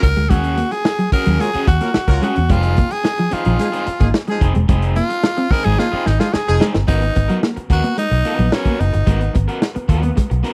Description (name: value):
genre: funk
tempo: 110 BPM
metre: 4/4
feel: straight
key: unclear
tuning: A4 = 440 Hz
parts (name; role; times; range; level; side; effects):
- raspy tenor saxophone; melody; 0.0-9.3 s; Db4 to Bb4; -24 LUFS; equal; none
- warm horn section; second line; 0.0-6.7 s; F3 to Bb4; -25 LUFS; equal; tube saturation
- crunchy overdriven guitar; accompaniment; 0.0-10.5 s; Cb4 to Bb4; -28 LUFS; equal; spring reverb
- mellow electric guitar; riff; 0.0-10.3 s; F3 to C4; -26 LUFS; equal; spring reverb
- vintage muted fingered electric bass; bass; 0.0-10.4 s; Fb1 to Fb2; -20 LUFS; equal; none
- crunchy breakbeat drum kit; drums; 0.0-10.5 s; hi-hat, kick drum, snare drum; -20 LUFS; equal; none
room: little or no reverb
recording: dry, close 1970s-style studio recording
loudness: -17 LUFS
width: mono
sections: 0.0-6.9 A section; 6.9-10.5 B section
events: tenor saxophone solo 0.0-6.9; drum fill 5.8-6.9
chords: 0.0 Ebm11; 2.5 Fm7; 6.9 Abm9